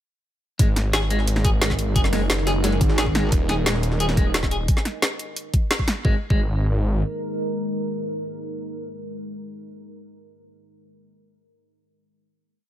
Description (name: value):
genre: dark technical drum and bass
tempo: 176 BPM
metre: 4/4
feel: straight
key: unclear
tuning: A4 = 439 Hz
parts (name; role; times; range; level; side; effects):
- deep dark ambient pad; sustained chords; 1.3-9.5 s; G#3 to D#5; -30 LUFS; right 1 dB; chorus, built-in reverb, sidechain pumping
- clean electric guitar; arpeggios; 0.6-6.4 s; G#3 to G#4; -28 LUFS; left 2 dB; sidechain pumping, tape echo
- snarling distorted saw bass; bass; 0.6-7.0 s; D#1 to G#1; -22 LUFS; equal; none
- drum and bass drum kit; drums; 0.6-5.9 s; hi-hat, snare drum; -24 LUFS; equal; overdrive
- electronic kick drum; drums; 0.6-6.4 s; none; -21 LUFS; equal; overdrive
- jungle sampler-style drum kit; drums; 0.6-4.6 s; hi-hat, snare drum; -32 LUFS; right 1 dB; high-pass filter on hats, high-pass filter on snare, high-pass filter on room
- metallic wobble bass; bass; 2.8-3.3 s; G#1; -22 LUFS; equal; distortion, chorus
room: digital ambience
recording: none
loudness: -19 LUFS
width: side -12 dB against mid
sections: 0.6-6.0 drop; 6.0-8.8 final chord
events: drop 0.6-6.0; band accent 5.7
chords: 0.6 G#5; 3.3 D#5; 6.0 G#5